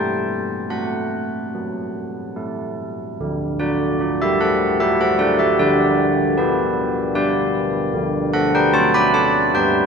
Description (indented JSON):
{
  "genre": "classical, tune for church bells",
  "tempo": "71-77 BPM",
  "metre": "3/4",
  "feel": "straight",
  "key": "D major",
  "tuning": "A4 = 440 Hz",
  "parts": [
    { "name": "carillon bells", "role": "solo", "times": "0.0-9.9 s", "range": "D3 to B5", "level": "-17 LUFS", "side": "equal", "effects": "none" }
  ],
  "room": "wet church reverb, RT60 3.5 s",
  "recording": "minimal, uncompressed stereo recording",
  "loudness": "-17 LUFS",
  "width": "side -6 dB against mid",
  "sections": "0.0-3.2 A section; 3.2-9.9 B section",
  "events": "none",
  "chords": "0.0 Em/G; 0.7 F#m; 2.3 A5; 3.2 D; 5.6 G/D; 7.9 D"
}